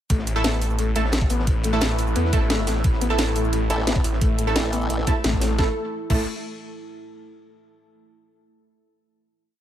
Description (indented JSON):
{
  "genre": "dark technical drum and bass",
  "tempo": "175 BPM",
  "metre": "4/4",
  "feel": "straight",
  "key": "unclear",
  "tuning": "A4 = 440 Hz",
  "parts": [
    { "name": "deep dark ambient pad", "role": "sustained chords", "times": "0.9-5.7 s", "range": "A3 to B4", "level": "-32 LUFS", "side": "right 2 dB", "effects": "chorus, built-in reverb, sidechain pumping" },
    { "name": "felt-muted upright piano", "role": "arpeggios", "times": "0.1-6.3 s", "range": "A3 to A4", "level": "-30 LUFS", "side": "left 5 dB", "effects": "vintage 12-bit sampler grit, sidechain pumping, digital delay" },
    { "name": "snarling distorted saw bass", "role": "bass", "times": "0.1-6.3 s", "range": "A1 to E2", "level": "-24 LUFS", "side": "equal", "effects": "distortion, overdrive" },
    { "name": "crunchy breakbeat drum kit", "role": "drums", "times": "0.1-5.6 s", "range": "hi-hat, snare drum", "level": "-36 LUFS", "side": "equal", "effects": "none" },
    { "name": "drum and bass drum kit", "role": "drums", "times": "0.1-6.2 s", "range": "crash cymbal, hi-hat, shaker, snare drum", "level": "-26 LUFS", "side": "equal", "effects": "overdrive" },
    { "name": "electronic kick drum", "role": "drums", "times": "0.1-6.2 s", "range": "none", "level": "-22 LUFS", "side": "equal", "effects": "none" },
    { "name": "orchestra-hit-like synth stab", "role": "stabs", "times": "0.4-6.2 s", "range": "A3 to A4", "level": "-28 LUFS", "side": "right 3 dB", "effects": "built-in reverb, digital delay" },
    { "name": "formant-sweep wobble bass", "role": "bass", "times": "3.7-5.1 s", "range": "A1", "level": "-25 LUFS", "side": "equal", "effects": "chorus" }
  ],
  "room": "light reverb, studio reverb",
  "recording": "none",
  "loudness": "-19 LUFS",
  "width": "side -11 dB against mid",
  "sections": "0.1-5.6 drop; 5.6-7.0 final chord",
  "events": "drop 0.1-5.6",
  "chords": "0.1 A5"
}